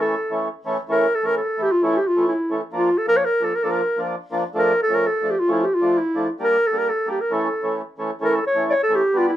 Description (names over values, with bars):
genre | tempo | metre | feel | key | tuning
klezmer | 131 BPM | 2/4 | straight | A phrygian dominant | A4 = 439 Hz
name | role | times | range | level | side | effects
mellow clarinet | melody | 0.0-9.4 s | E4 to D5 | -19 LUFS | equal | none
mellow accordion | accompaniment | 0.0-9.3 s | E3 to E4 | -24 LUFS | equal | none
room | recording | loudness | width
moderate studio ambience, RT60 0.5 s | minimal, uncompressed stereo recording | -18 LUFS | side -12 dB against mid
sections
0.9-8.2 A section; 8.2-9.4 B section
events
none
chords
0.0 A; 2.7 Bb; 4.6 Dm; 6.4 Gm; 7.3 A